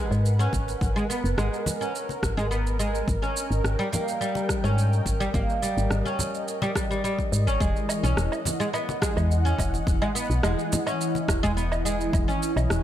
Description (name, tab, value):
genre	organic downtempo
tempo	106 BPM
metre	4/4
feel	straight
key	unclear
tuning	A4 = 438 Hz
part	warm analog pad	sustained chords	0.0-12.8 s	E3 to G#5	-31 LUFS	equal	chorus, sidechain pumping
part	oud	arpeggios	0.0-12.8 s	G3 to C#4	-29 LUFS	equal	vintage 12-bit sampler grit, tape echo
part	woody FM bass	bass	0.1-12.8 s	E1 to G#2	-24 LUFS	equal	tube saturation, sidechain pumping
part	electronic shaker, rim click and woodblock	drums	0.1-12.8 s	none	-32 LUFS	right 2 dB	overdrive, studio reverb
part	electronic kick drum	drums	0.5-12.3 s	none	-28 LUFS	equal	overdrive, studio reverb
part	congas	percussion	0.5-11.3 s	none	-32 LUFS	left 2 dB	none
room	digital ambience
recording	none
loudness	-23 LUFS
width	side -11 dB against mid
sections	0.0-7.6 A section; 7.6-12.8 B section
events	none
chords	0.0 G#m7; 3.1 D#/G#; 7.6 Emaj7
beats	0.25 | 0.81 1.38 1.95 2.51 | 3.08 3.64 4.21 4.78 | 5.34 5.91 6.47 7.04 | 7.61 8.17 8.74 9.30 | 9.87 10.44 11.00 11.57 | 12.13 12.70